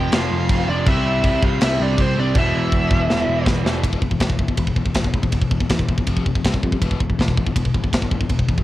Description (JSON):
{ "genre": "heavy metal", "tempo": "161 BPM", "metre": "4/4", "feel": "straight", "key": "E phrygian", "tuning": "A4 = 440 Hz", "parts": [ { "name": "high-gain lead guitar", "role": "melody", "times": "0.0-3.5 s", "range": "C5 to G5", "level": "-24 LUFS", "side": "equal", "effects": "distortion, cassette tape, tape echo" }, { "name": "high-gain lead guitar", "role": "second line", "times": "0.0-3.5 s", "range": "C4 to G4", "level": "-31 LUFS", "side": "equal", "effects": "distortion" }, { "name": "distorted electric guitar", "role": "riff", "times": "0.0-8.6 s", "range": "E2 to C4", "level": "-25 LUFS", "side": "left 6 dB", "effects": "distortion" }, { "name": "tight distorted guitar", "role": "riff", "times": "0.0-3.8 s", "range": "E2 to C4", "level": "-25 LUFS", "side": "right 6 dB", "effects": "distortion" }, { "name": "picked electric bass", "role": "bass", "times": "0.0-8.6 s", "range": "E1 to F2", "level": "-23 LUFS", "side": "equal", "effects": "none" }, { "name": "tight metal drum kit", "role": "drums", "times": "0.1-8.6 s", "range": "crash cymbal, kick drum, ride cymbal, snare drum", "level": "-20 LUFS", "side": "equal", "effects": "cassette tape" } ], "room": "small room ambience", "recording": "home recording on cassette", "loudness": "-17 LUFS", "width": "side -15 dB against mid", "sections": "0.0-3.8 A section; 3.8-8.6 B section", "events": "half time 0.0-3.8; drum fill 3.1-3.8", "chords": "0.0 F5; 0.9 C; 2.4 E5; 6.1 F5; 6.4 C5; 6.8 E5" }